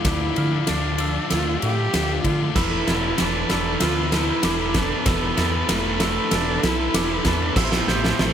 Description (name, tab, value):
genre	post-rock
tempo	96 BPM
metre	4/4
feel	straight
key	unclear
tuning	A4 = 442 Hz
part	warm cello	melody	0.0-8.3 s	A3 to G4	-26 LUFS	right 2 dB	tape echo
part	warm analog pad	sustained chords	0.0-8.3 s	F3 to E6	-36 LUFS	right 3 dB	none
part	glockenspiel with rubber mallets	arpeggios	0.0-8.3 s	D6 to A6	-33 LUFS	right 5 dB	tape echo
part	twelve-string electric guitar	arpeggios	0.0-8.3 s	A2 to A4	-31 LUFS	left 4 dB	tremolo, tape echo
part	sludgy distorted guitar	riff	0.0-8.3 s	D4 to C5	-28 LUFS	left 12 dB	overdrive
part	huge arena drum kit	drums	0.0-8.3 s	crash cymbal, kick drum, ride cymbal, snare drum	-24 LUFS	right 1 dB	none
part	growling fingered electric bass	bass	0.1-8.3 s	E1 to D3	-26 LUFS	equal	overdrive
part	thick fuzz guitar	riff	2.6-8.3 s	E4 to C5	-27 LUFS	right 12 dB	distortion
room	moderate booth ambience, RT60 0.2 s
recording	none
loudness	-19 LUFS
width	side -9 dB against mid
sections	0.0-8.3 A section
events	build-up 0.0-8.3; drum fill 0.0-8.3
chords	0.0 Dm; 2.6 E7sus4; 7.6 Am7